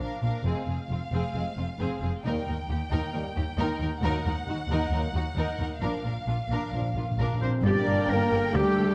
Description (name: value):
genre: cinematic, heroic adventure film score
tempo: 134 BPM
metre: 4/4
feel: straight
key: Bb mixolydian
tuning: A4 = 440 Hz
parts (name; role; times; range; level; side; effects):
- warm symphonic violin section; melody; 0.0-8.9 s; F5 to G5; -40 LUFS; equal; none
- warm symphonic violin section; second line; 0.0-8.9 s; F4 to D5; -39 LUFS; equal; none
- warm symphonic viola section; accompaniment; 0.0-8.9 s; A3 to Bb4; -37 LUFS; equal; none
- warm French horn section; sustained chords; 0.0-8.9 s; F3 to D4; -33 LUFS; equal; none
- dark symphonic cello section; bass; 0.0-8.8 s; D2 to Bb2; -34 LUFS; equal; none
- warm symphonic double bass section; bass; 0.0-8.8 s; F1 to Eb2; -34 LUFS; equal; none
- timpani; percussion; 5.8-8.3 s; G2 to Bb2; -35 LUFS; equal; none
- small flute group; second line; 7.4-8.9 s; G4 to D5; -38 LUFS; equal; none
- warm oboe; second line; 7.4-8.9 s; G4 to D5; -35 LUFS; equal; none
- warm tuba; bass; 7.6-8.9 s; G1 to D2; -36 LUFS; equal; none
- warm trombone section; sustained chords; 7.7-8.9 s; D3 to Bb3; -38 LUFS; equal; none
- clear clarinet; second line; 8.5-8.9 s; G4; -38 LUFS; equal; none
room: moderate scoring stage reverb, RT60 1.6 s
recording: dark, warm production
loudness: -28 LUFS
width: mono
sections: 0.5-7.6 A section; 7.6-8.9 B section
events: timpani fill 5.8-7.6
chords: 0.5 Fm; 2.3 Eb; 4.0 Ebm; 5.8 Bb; 7.6 Gm